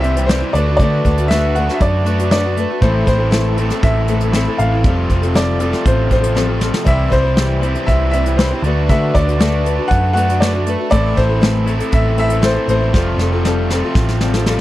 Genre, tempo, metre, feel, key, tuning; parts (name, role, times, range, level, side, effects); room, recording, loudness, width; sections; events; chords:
folk rock and heartland rock; 119 BPM; 4/4; straight; A4 = 440 Hz
clear grand piano; melody; 0.0-14.4 s; C5 to F#5; -20 LUFS; left 1 dB
picked old ladder-braced acoustic guitar; accompaniment; 0.0-14.6 s; A2 to C5; -20 LUFS; left 4 dB
cranked stack guitar; riff; 0.0-14.6 s; F2 to G4; -22 LUFS; right 2 dB; overdrive
hollow-body short-scale picked electric bass; bass; 0.0-14.6 s; F1 to D3; -17 LUFS; equal
soft brush drum kit; drums; 0.0-14.6 s; hi-hat, kick drum, snare drum; -17 LUFS; equal
little or no reverb; dry, close 1970s-style studio recording; -13 LUFS; side -15 dB against mid
0.0-14.6 A section
drum fill 6.4-6.9, 12.9-14.6
0.0 C; 0.5 D6; 2.8 Am; 4.8 Fadd9; 6.9 C; 8.6 D6; 10.9 Am; 12.9 Fadd9